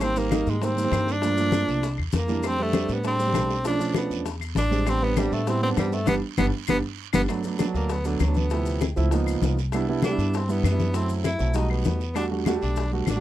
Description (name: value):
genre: Afro-Cuban jazz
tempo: 198 BPM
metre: 4/4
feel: straight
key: unclear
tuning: A4 = 440 Hz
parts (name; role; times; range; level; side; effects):
- clear tenor saxophone; melody; 0.0-13.2 s; D3 to E4; -28 LUFS; equal; none
- warm grand piano; accompaniment; 0.0-13.2 s; C3 to G4; -27 LUFS; right 4 dB; none
- upright bass; bass; 0.0-13.2 s; G1 to A2; -26 LUFS; equal; none
- bongos; percussion; 0.0-13.2 s; none; -34 LUFS; left 11 dB; none
- claves; percussion; 0.0-13.2 s; none; -37 LUFS; left 18 dB; none
- congas; percussion; 0.0-13.2 s; none; -29 LUFS; left 3 dB; none
- guiro; percussion; 0.0-13.2 s; none; -42 LUFS; right 22 dB; none
- maracas; percussion; 0.0-13.2 s; none; -44 LUFS; left 11 dB; none
room: light reverb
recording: dry, close 1970s-style studio recording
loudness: -22 LUFS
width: side -13 dB against mid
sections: 0.0-7.3 A section; 7.3-13.2 B section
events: band accent 6.1-7.3; tenor saxophone solo 7.3-13.2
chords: 0.0 Abmaj9; 1.2 Gm9; 1.8 C9; 2.4 F69; 3.7 Bm7b5; 4.3 E7alt; 4.9 Am11; 6.1 G; 7.3 D6; 8.5 Dm9; 9.1 C#13; 9.7 Cmaj7; 10.9 F#m7b5; 11.6 B7b13; 12.2 Em11